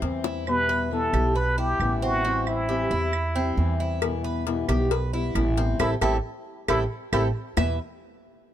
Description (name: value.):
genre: latin, Cuban son and guajira.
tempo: 135 BPM.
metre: 4/4.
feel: straight.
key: E minor.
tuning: A4 = 440 Hz.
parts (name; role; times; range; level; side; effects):
trumpet with plunger mute; melody; 0.0-7.2 s; E4 to B4; -26 LUFS; right 1 dB; none.
fingerpicked acoustic archtop guitar; accompaniment; 0.0-7.8 s; E2 to E4; -30 LUFS; left 6 dB; none.
Cuban tres; arpeggios; 0.0-7.8 s; C4 to E5; -30 LUFS; right 4 dB; none.
upright bass; bass; 0.0-7.8 s; A1 to E2; -27 LUFS; right 1 dB; none.
cowbell and bongos; percussion; 0.0-0.3, 4.0-7.7 s; none; -31 LUFS; left 10 dB; none.
claves; percussion; 0.5-7.7 s; none; -33 LUFS; right 7 dB; none.
room: little or no reverb.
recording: close, detailed microphones.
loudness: -22 LUFS.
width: side -11 dB against mid.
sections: 0.5-7.6 A section.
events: drum fill 0.0-0.5, 7.4; band accent 5.8-7.6.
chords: 0.5 Em; 2.2 Am7; 4.0 Em; 5.8 Am7; 7.6 Em.